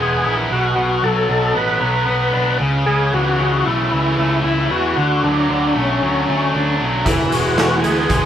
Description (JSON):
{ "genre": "classic rock", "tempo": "114 BPM", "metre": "4/4", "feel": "straight", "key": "B dorian", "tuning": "A4 = 440 Hz", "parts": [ { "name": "overdriven tonewheel organ", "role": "melody", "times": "0.0-8.3 s", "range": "C#4 to B4", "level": "-19 LUFS", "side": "left 2 dB", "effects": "chorus vibrato, slow rotary speaker, analog delay" }, { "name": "tight distorted guitar", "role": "riff", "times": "0.0-8.3 s", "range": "B2 to E4", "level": "-19 LUFS", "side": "equal", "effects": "distortion" }, { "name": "fuzz picked electric bass", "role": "bass", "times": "0.0-8.3 s", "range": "E1 to E2", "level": "-21 LUFS", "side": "equal", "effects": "overdrive" }, { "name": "picked steel-string acoustic guitar", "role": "accompaniment", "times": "7.1-8.3 s", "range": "E3 to G#4", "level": "-23 LUFS", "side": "right 3 dB", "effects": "none" }, { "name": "tonewheel organ", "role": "sustained chords", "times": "7.1-8.3 s", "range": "B3 to B4", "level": "-29 LUFS", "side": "right 1 dB", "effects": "none" }, { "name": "raw garage drum kit", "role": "drums", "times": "7.1-8.2 s", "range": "hi-hat, kick drum, snare drum", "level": "-21 LUFS", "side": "right 1 dB", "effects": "none" } ], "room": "moderate stone room reverb, RT60 1.0 s", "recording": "band playing live in one room", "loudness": "-15 LUFS", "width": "side -10 dB against mid", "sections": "0.0-8.3 A section", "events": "none", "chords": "0.0 E; 0.5 Bm; 2.6 A; 5.0 D; 7.1 E", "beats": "0.25 | 0.77 1.30 1.82 2.35 | 2.88 3.40 3.93 4.45 | 4.97 5.50 6.02 6.54 | 7.06 7.58 8.11" }